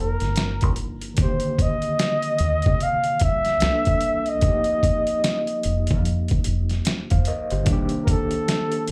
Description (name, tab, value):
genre	R&B, neo-soul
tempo	74 BPM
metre	4/4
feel	swing 60% on 16ths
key	C dorian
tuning	A4 = 440 Hz
part	breathy flugelhorn	melody	0.0-8.9 s	A4 to F5	-26 LUFS	equal	slapback echo
part	overdriven tine electric piano	accompaniment	0.0-8.9 s	D3 to F5	-31 LUFS	equal	medium tremolo, slapback echo
part	deep dub fingered electric bass	bass	0.0-8.2 s	F1 to C3	-28 LUFS	equal	none
part	boom bap sampler-style drum kit	drums	0.2-8.9 s	hi-hat, kick drum, snare drum	-26 LUFS	equal	overdrive
room	little or no reverb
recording	live gig heard through the venue's PA, club ambience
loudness	-22 LUFS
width	mono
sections	0.0-8.9 A section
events	none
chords	0.0 F9sus4; 1.2 Cm9; 3.6 C13; 4.4 F9sus4; 7.7 Cm9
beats	0.37 | 1.18 1.99 2.80 3.61 | 4.42 5.23 6.04 6.86 | 7.67 8.48